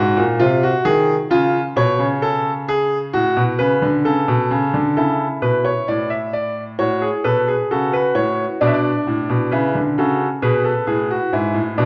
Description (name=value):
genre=classical, baroque-style 3-part fugue for grand piano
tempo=66 BPM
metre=4/4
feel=straight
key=unclear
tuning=A4 = 441 Hz
part: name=bright concert grand piano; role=solo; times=0.0-11.9 s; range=G#2 to E5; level=-18 LUFS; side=equal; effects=none
room=wet recital hall reverb, RT60 1.6 s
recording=nothing above 7.6 kHz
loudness=-18 LUFS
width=mono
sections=0.0-5.0 A section; 5.0-11.9 B section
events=none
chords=0.0 G#7; 1.3 C#; 3.1 F#m/A; 5.0 A; 6.8 F#m/A; 8.6 Bm; 10.4 G#m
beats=0.41 | 1.31 2.22 3.13 4.04 | 4.96 5.88 6.80 7.71 | 8.61 9.52 10.42 11.32